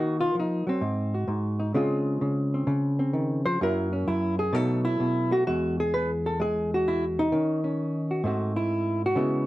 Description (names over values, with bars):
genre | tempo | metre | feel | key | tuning
solo jazz | 129 BPM | 4/4 | swing 68% on 8ths | E major from 5.4 s | A4 = 445 Hz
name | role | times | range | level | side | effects
hollow-body jazz guitar | solo | 0.0-9.5 s | E2 to C5 | -24 LUFS | equal | none
room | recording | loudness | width
moderate studio reverb, RT60 0.8 s | close, detailed microphones | -24 LUFS | side -16 dB against mid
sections
0.0-5.4 A section; 5.4-9.5 B section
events
hollow-body jazz guitar solo 0.0-5.4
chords
0.0 Ebmadd9; 0.8 Ab5; 1.7 Dbmaj9; 3.6 Gb7; 4.5 B7; 5.4 Eadd9; 7.3 D#m7; 8.2 G#7b9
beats
0.34 0.81 1.27 | 1.73 2.20 2.66 3.12 | 3.59 4.05 4.51 4.98 | 5.44 5.90 6.37 6.83 | 7.29 7.76 8.22 8.69 | 9.15